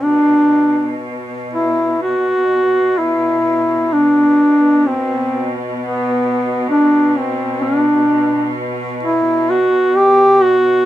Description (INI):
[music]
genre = caucasian folk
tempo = 64 BPM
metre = 4/4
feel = rubato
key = B phrygian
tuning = A4 = 440 Hz
[part]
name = mellow duduk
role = melody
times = 0.0-10.9 s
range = B3 to G4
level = -12 LUFS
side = equal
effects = none
[part]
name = clear symphonic string section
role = drone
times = 0.0-10.9 s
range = B2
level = -23 LUFS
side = equal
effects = none
[sound]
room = light reverb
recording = minimal, uncompressed stereo recording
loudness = -12 LUFS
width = side -14 dB against mid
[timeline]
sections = 0.0-10.9 A section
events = none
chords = none